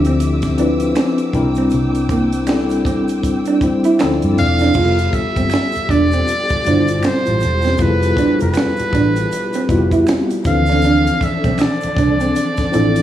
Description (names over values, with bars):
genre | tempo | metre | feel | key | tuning
R&B, neo-soul | 79 BPM | 4/4 | swing 60% on 16ths | unclear | A4 = 440 Hz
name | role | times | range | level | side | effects
electric guitar through a small old amp | second line | 0.0-12.9 s | Bb3 to F4 | -20 LUFS | right 5 dB | tape echo
tine electric piano | accompaniment | 0.0-13.0 s | B2 to C5 | -18 LUFS | left 3 dB | medium tremolo
warm studio string section | sustained chords | 0.0-13.0 s | D3 to E6 | -27 LUFS | right 1 dB | none
vintage muted fingered electric bass | bass | 0.0-13.0 s | E1 to G2 | -19 LUFS | equal | none
tight funk drum kit | drums | 0.0-13.0 s | crash cymbal, finger snaps, hi-hat, kick drum, snare drum | -22 LUFS | right 1 dB | none
egg shaker and finger snaps | percussion | 0.1-13.0 s | none | -39 LUFS | right 7 dB | none
trumpet with metal mute | melody | 4.4-13.0 s | B4 to F5 | -20 LUFS | equal | none
room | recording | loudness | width
light reverb, small room ambience | vinyl crackle, small room reverb | -13 LUFS | side -12 dB against mid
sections
0.0-4.8 A section; 4.8-13.0 B section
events
none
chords
0.0 Dm9; 1.3 C9; 4.0 Dm9; 4.8 Fmaj9#11; 10.4 Dm9